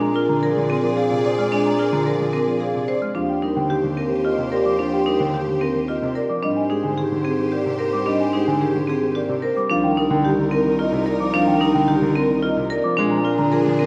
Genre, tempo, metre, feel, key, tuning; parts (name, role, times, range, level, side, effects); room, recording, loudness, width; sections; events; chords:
classical, minimalist pattern music; 110 BPM; 3/4; straight; Eb major; A4 = 438 Hz
vibraphone with medium mallets; melody; 0.0-13.9 s; G4 to Ab5; -29 LUFS; equal
mellow hollow wooden-headed alto flute; second line; 0.0-13.9 s; D4 to Ab4; -29 LUFS; equal
warm concert grand piano; accompaniment; 0.0-13.8 s; C3 to C4; -28 LUFS; equal
clear symphonic string section; sustained chords; 0.0-13.9 s; D4 to D5; -34 LUFS; equal
celesta; arpeggios; 0.0-13.6 s; G5 to F6; -30 LUFS; equal
marimba with hard mallets; arpeggios; 0.0-13.9 s; C4 to C5; -25 LUFS; equal
warm bass clarinet; bass; 0.0-13.9 s; C2 to Bb2; -29 LUFS; equal
moderate scoring stage reverb, RT60 1.7 s; -20 LUFS; mono
0.0-13.9 A section
0.0 Bb7; 3.2 Eb69; 6.4 Abmaj9; 9.7 Cm9; 13.0 Bb7